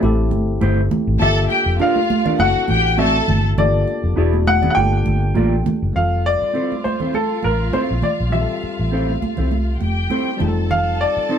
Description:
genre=lush 1970s-style soul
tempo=101 BPM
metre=4/4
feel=swing 54% on 16ths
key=unclear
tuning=A4 = 440 Hz
part: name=barky tine electric piano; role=accompaniment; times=0.0-11.4 s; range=G3 to A4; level=-26 LUFS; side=left 4 dB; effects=none
part: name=vintage muted fingered electric bass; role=bass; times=0.0-11.2 s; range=E1 to C2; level=-19 LUFS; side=equal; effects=none
part: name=congas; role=percussion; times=0.0-11.4 s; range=none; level=-24 LUFS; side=right 4 dB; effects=none
part: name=mellow electric guitar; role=riff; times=0.6-11.4 s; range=A3 to D5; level=-22 LUFS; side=right 2 dB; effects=none
part: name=clear baby grand piano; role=melody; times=1.2-11.4 s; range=A4 to G5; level=-21 LUFS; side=left 1 dB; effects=tape echo
part: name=muted studio string section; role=second line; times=1.2-11.4 s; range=F4 to A5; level=-23 LUFS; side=left 1 dB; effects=none
room=moderate studio ambience, RT60 0.5 s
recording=band playing live in one room, tape saturation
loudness=-16 LUFS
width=side -8 dB against mid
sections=0.0-5.9 A section; 5.9-11.4 B section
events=none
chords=0.0 Am7; 1.2 Gm7; 2.4 D7/F#; 3.6 Gm7; 4.2 E7; 4.8 Gm9; 5.9 Fmaj7; 10.4 F7

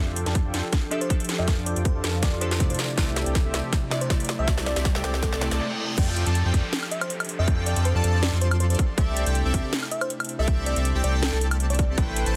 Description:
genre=future bass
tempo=160 BPM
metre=4/4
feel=half-time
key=unclear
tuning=A4 = 441 Hz
part: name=glassy digital keys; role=accompaniment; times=0.0-6.0 s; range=C3 to D5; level=-35 LUFS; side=equal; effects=chorus, sidechain pumping, tape echo
part: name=airy breathy pad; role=sustained chords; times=0.6-12.4 s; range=C3 to A4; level=-40 LUFS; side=equal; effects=none
part: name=soft supersaw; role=riff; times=0.0-12.4 s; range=F3 to C6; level=-34 LUFS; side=equal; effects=sidechain pumping, low-pass filter
part: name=saturated sub bass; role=bass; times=0.0-12.4 s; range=A1 to F2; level=-27 LUFS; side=equal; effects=sidechain pumping
part: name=riser, reverse cymbal and downlifter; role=sound effects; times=3.5-9.0 s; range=none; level=-40 LUFS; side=equal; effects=none
part: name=trap drum kit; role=drums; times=0.2-12.3 s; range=crash cymbal, hi-hat, snare drum, woodblock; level=-32 LUFS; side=equal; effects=overdrive, high-pass filter on snare, high-pass filter on hats, high-pass filter on cymbals, high-pass filter on perc, high-pass filter on room
part: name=electronic kick drum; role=drums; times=0.4-12.1 s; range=none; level=-26 LUFS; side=equal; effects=overdrive
part: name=bell-like FM electric piano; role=melody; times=0.9-12.0 s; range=A4 to E5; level=-36 LUFS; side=equal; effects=chorus, sidechain pumping, tape echo
part: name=airy dreamy lead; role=arpeggios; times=6.0-12.4 s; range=E5 to C6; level=-39 LUFS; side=equal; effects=chorus, sidechain pumping, tape echo
room=digital ambience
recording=dense, heavily limited modern master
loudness=-24 LUFS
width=mono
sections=0.0-6.0 A section; 6.0-12.4 B section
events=build-up 0.0-6.0; drum fill 0.0-5.6; filter sweep on supersaw synth 0.0-6.0; reverse cymbal 5.3-6.0; break 5.6-6.0; drop 6.0-12.4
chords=0.0 F69; 2.8 C69; 6.0 F69; 8.8 C69

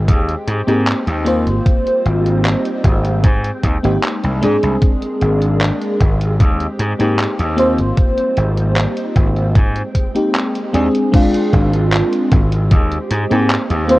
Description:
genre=vaporwave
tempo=76 BPM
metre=4/4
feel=straight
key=Ab lydian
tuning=A4 = 440 Hz
part: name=soft string machine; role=sustained chords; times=0.0-14.0 s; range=G3 to G5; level=-26 LUFS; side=equal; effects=phaser, ensemble chorus
part: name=gritty slap bass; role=bass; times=0.0-14.0 s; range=Ab1 to Ab2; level=-17 LUFS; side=equal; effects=overdrive
part: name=detuned 8-bit digital drum machine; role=drums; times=0.1-14.0 s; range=crash cymbal, handclaps, hi-hat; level=-23 LUFS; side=equal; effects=vintage 12-bit sampler grit
part: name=electronic kick drum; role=drums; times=0.1-12.9 s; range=none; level=-14 LUFS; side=equal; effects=vintage 12-bit sampler grit
part: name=FM electric piano with soft pad layer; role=accompaniment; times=0.7-14.0 s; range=Ab3 to C5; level=-17 LUFS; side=equal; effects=analog chorus, analog delay
room=little or no reverb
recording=worn, warbling old tape, cassette tape, warbly pitch drift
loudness=-13 LUFS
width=side -18 dB against mid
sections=0.0-11.1 A section; 11.1-14.0 B section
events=none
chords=0.0 Abmaj9; 4.8 Bb9/Ab; 6.0 Abmaj9; 11.1 Bb9/Ab; 12.3 Abmaj9

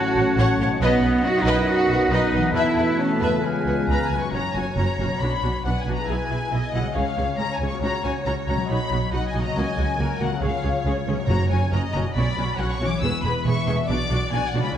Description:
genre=cinematic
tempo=138 BPM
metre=4/4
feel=straight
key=F# major from 4.3 s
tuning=A4 = 440 Hz
part: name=rich symphonic violin section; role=melody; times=0.0-14.8 s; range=E#5 to E6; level=-29 LUFS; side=left 4 dB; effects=none
part: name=bright clarinet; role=second line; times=0.0-4.1 s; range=B4 to C#5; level=-31 LUFS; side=left 2 dB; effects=none
part: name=mellow large flute ensemble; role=second line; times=0.0-4.1 s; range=F#5 to A5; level=-32 LUFS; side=right 1 dB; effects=none
part: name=warm oboe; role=second line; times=0.0-4.1 s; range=D#5 to F#5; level=-31 LUFS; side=equal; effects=none
part: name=mellow French horn section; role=sustained chords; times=0.0-4.1 s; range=B3 to E#4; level=-28 LUFS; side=left 3 dB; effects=none
part: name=warm trombone section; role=sustained chords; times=0.0-4.1 s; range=F#2 to A3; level=-28 LUFS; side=right 2 dB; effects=none
part: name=concert harp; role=arpeggios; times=0.0-14.8 s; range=F#2 to C#6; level=-30 LUFS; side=left 6 dB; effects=none
part: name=rich symphonic cello section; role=bass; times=0.0-14.8 s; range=E2 to F#4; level=-28 LUFS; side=right 2 dB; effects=none
part: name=rich symphonic violin section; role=second line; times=0.2-14.8 s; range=A#4 to Bb5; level=-31 LUFS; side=left 3 dB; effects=none
part: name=rich symphonic viola section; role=accompaniment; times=0.2-14.6 s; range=A#3 to C#5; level=-30 LUFS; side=right 1 dB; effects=none
part: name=clear symphonic double bass section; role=bass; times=0.2-14.6 s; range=E1 to E2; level=-25 LUFS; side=right 2 dB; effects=none
part: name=timpani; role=percussion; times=11.3-11.9 s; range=F#2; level=-27 LUFS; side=equal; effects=none
room=moderate concert hall reverb, RT60 1.7 s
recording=dark, warm production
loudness=-20 LUFS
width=side -10 dB against mid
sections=0.0-4.3 A section; 4.3-14.8 B section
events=none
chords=0.0 F#m/A; 0.8 B; 2.6 Esus4; 3.4 C#7; 4.3 F#; 5.2 Bm; 6.1 E/B; 7.0 C#; 7.8 F#/C#; 8.7 B; 9.6 F#/C#; 11.3 F#; 12.1 Bmadd9; 13.0 E; 13.9 Bm

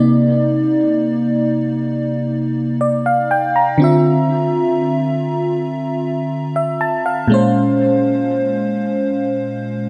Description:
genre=R&B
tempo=60 BPM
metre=4/4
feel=straight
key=D phrygian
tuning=A4 = 445 Hz
part: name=FM electric piano with soft pad layer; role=solo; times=0.0-9.9 s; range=Bb2 to Bb5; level=-17 LUFS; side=equal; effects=chorus, tape echo
room=moderate lush hall reverb, RT60 2.7 s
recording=dark, warm production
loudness=-17 LUFS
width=mono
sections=0.0-9.9 A section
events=none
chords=0.0 Cm9; 3.8 Dm9; 7.3 Bbm9

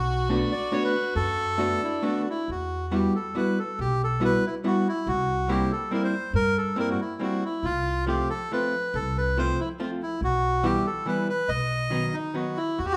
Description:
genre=musette waltz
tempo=140 BPM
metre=3/4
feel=rubato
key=E harmonic minor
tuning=A4 = 440 Hz
part: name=bandoneon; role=melody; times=0.0-13.0 s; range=D#4 to D#5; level=-29 LUFS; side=equal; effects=none
part: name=rich violin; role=second line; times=0.0-2.3, 12.8-13.0 s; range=D4 to F#4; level=-36 LUFS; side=equal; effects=none
part: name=upright bass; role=bass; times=0.0-13.0 s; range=B1 to G2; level=-31 LUFS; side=equal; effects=none
part: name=archtop guitar, miked and amplified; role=accompaniment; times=0.3-12.6 s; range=D#3 to F#4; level=-30 LUFS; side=equal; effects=none
room=moderate large studio reverb, RT60 1.1 s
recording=band playing live in one room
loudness=-26 LUFS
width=mono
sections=0.0-2.5 A section; 2.5-13.0 B section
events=none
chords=0.0 Bm7; 2.5 Emadd9; 5.1 C7; 7.6 F/C; 10.2 Em/B; 11.5 B

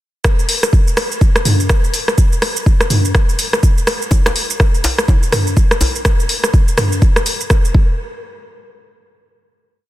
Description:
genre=house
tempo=124 BPM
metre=4/4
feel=swing 60% on 16ths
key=none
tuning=none
part: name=deep house drum kit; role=drums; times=0.2-7.7 s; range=hi-hat, rim click, shaker, toms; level=-16 LUFS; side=equal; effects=overdrive
part: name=electronic kick drum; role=drums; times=0.2-7.9 s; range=none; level=-12 LUFS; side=equal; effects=overdrive
part: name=djembe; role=percussion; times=4.1-5.9 s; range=none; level=-21 LUFS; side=left 1 dB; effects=none
room=digital ambience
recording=dense, heavily limited modern master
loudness=-12 LUFS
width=side -15 dB against mid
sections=0.2-8.0 drop; 8.0-9.9 final hit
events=drop 0.2-8.0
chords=none

